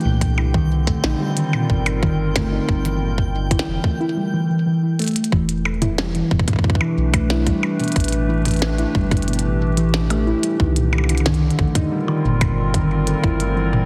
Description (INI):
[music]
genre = IDM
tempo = 91 BPM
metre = 4/4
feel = straight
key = E minor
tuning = A4 = 440 Hz
[part]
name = warbly tape-like pad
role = sustained chords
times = 0.0-13.9 s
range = D3 to B4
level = -28 LUFS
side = equal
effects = chorus, built-in reverb, sidechain pumping
[part]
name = harp-like synth pluck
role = arpeggios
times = 0.0-13.8 s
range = Bb2 to E4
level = -24 LUFS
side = equal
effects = chorus, digital delay
[part]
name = warm sub bass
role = bass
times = 0.0-13.9 s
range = D1 to C2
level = -24 LUFS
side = equal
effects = none
[part]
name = glitchy drum kit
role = drums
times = 0.0-13.9 s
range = hi-hat, percussion blips, snare drum, toms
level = -27 LUFS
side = equal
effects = delay
[part]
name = twinkling granular texture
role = texture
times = 0.0-4.0 s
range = G5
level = -37 LUFS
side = equal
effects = built-in reverb
[part]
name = electronic kick drum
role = drums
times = 0.2-13.4 s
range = none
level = -22 LUFS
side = equal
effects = none
[sound]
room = light reverb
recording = heavily compressed radio sound, multiband compression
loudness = -19 LUFS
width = mono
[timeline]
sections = 0.0-5.3 A section; 5.3-13.9 B section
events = drum fill 5.0-5.3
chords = 0.0 Cm9; 2.7 Gm9; 5.3 Em7; 7.6 Asus2; 10.6 Cm9; 13.2 Gm7